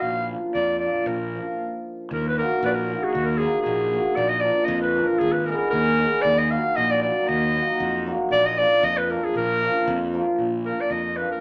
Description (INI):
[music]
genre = balkan folk, Balkan wedding band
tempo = 116 BPM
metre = 2/4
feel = swing 54% on 16ths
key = Bb phrygian dominant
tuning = A4 = 437 Hz
[part]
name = bright clarinet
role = melody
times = 0.0-11.4 s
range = Gb4 to F5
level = -25 LUFS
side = equal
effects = none
[part]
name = cimbalom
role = accompaniment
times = 0.0-11.4 s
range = F3 to Cb5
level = -28 LUFS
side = equal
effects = none
[part]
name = fuzz fingered electric bass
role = bass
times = 0.0-11.2 s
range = Ab1 to F2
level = -31 LUFS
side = equal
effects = overdrive
[sound]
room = wet studio reverb, RT60 0.7 s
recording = none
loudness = -23 LUFS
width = mono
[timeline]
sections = 0.0-2.1 A section; 2.1-10.4 B section; 10.4-11.4 C section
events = stop 1.6-2.1; clarinet solo 10.4-11.4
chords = 0.0 Bb; 2.1 Ebm; 4.2 Bb; 5.2 Abm; 6.2 Ebm; 8.3 Bb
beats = | 0.01 0.54 | 1.06 1.58 | 2.10 2.62 | 3.14 3.66 | 4.18 4.70 | 5.21 5.73 | 6.25 6.77 | 7.28 7.80 | 8.32 8.84 | 9.36 9.88 | 10.40 10.92